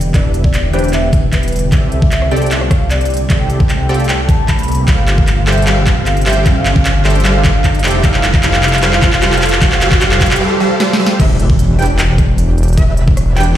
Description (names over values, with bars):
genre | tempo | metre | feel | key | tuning
future bass | 152 BPM | 4/4 | half-time | unclear | A4 = 439 Hz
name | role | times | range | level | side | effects
warm velvety synth lead | melody | 0.0-10.4 s | B4 to B5 | -21 LUFS | equal | chorus, sidechain pumping, dub echo
shimmering ambient pad | sustained chords | 0.0-10.4 s | C3 to G4 | -25 LUFS | right 1 dB | chorus, built-in reverb, phaser, sidechain pumping
supersaw stab | riff | 0.0-13.6 s | E3 to G5 | -18 LUFS | equal | sidechain pumping, low-pass filter, dub echo
wide detuned saw bass | bass | 0.0-13.6 s | E1 to C2 | -15 LUFS | equal | chorus, sidechain pumping
trap drum kit | drums | 0.0-13.5 s | crash cymbal, handclaps, hi-hat, rim click, snare drum | -18 LUFS | equal | overdrive
riser and impact | sound effects | 1.9-12.8 s | none | -22 LUFS | equal | none
electronic kick drum | drums | 0.1-13.2 s | none | -12 LUFS | equal | overdrive
wide unison pluck | arpeggios | 11.2-13.6 s | E5 to G5 | -22 LUFS | right 2 dB | sidechain pumping
room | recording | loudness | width
light reverb | played on a big sound system in a bare room, stone room reverb | -10 LUFS | side -12 dB against mid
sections
0.0-11.2 A section; 11.2-13.6 B section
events
build-up 0.0-11.2; drum fill 0.0-10.4, 10.8-11.2; filter sweep on soft synth lead 0.0-11.2; riser 1.9-10.4; drop 11.2-13.6; impact 11.2-12.8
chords
0.0 Em7; 1.7 C6; 4.9 G9sus4; 7.8 F; 11.2 Em7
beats
| 0.14 0.54 0.93 1.33 | 1.72 2.12 2.51 2.91 | 3.30 3.70 4.09 4.49 | 4.88 5.28 5.67 6.06 | 6.46 6.85 7.25 7.64 | 8.04 8.43 8.83 9.22 | 9.62 10.01 10.41 10.80 | 11.20 11.59 11.99 12.38 | 12.78 13.17 13.56